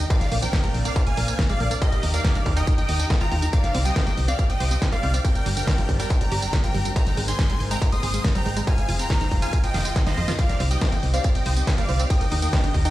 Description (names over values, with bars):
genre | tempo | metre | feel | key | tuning
uplifting trance | 140 BPM | 4/4 | straight | C minor | A4 = 436 Hz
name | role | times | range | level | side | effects
big supersaw lead | melody | 0.0-12.9 s | G4 to Eb6 | -30 LUFS | equal | phaser, sidechain pumping, dub echo
plucky unison lead | second line | 0.0-12.9 s | Eb5 to Eb6 | -32 LUFS | left 1 dB | phaser, sidechain pumping, dub echo
lush unison pad | sustained chords | 0.0-12.9 s | C3 to Bb4 | -34 LUFS | equal | chorus, sidechain pumping
tight sequenced synth | arpeggios | 0.0-12.9 s | D3 to F5 | -33 LUFS | right 2 dB | chorus, sidechain pumping, dub echo
solid FM bass | bass | 0.0-12.9 s | F1 to F2 | -24 LUFS | equal | sidechain pumping
big-room dance drum kit | drums | 0.0-12.9 s | hi-hat, ride cymbal, snare drum, tambourine | -29 LUFS | equal | none
electronic kick drum | drums | 0.1-12.8 s | none | -22 LUFS | equal | distortion, overdrive
room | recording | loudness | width
digital ambience | played on a big sound system in a bare room, stone room reverb | -20 LUFS | side -15 dB against mid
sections
0.0-12.9 A section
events
drum fill 9.7-10.4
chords
0.1 Bbadd9; 1.8 Eb; 3.5 Cm; 5.2 Gsus4; 7.0 Abadd9; 8.7 Fm; 10.4 Cm; 12.1 Eb